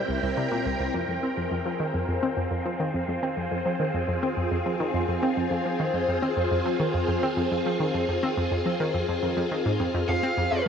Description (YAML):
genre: ambient, sequencer-driven space music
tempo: 105 BPM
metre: 4/4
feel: straight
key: F minor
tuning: A4 = 443 Hz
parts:
  - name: phased string machine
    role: sustained chords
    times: 0.0-10.7 s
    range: C3 to G5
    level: -27 LUFS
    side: equal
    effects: ensemble chorus, phaser
  - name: pulsing gated texture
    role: texture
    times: 0.0-1.0 s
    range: C5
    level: -42 LUFS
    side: right 5 dB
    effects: none
  - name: analog pluck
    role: riff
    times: 0.1-10.6 s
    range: C2 to C4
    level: -27 LUFS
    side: equal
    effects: chorus, tape echo
  - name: bluesy overdriven lead guitar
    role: melody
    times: 10.1-10.6 s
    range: F5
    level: -26 LUFS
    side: right 1 dB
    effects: distortion
room: wet huge ambient reverb, RT60 8.5 s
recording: in a vast, echoing space, cassette tape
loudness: -24 LUFS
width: side -7 dB against mid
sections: 0.9-10.7 A section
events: none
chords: 0.0 C7; 0.9 Fm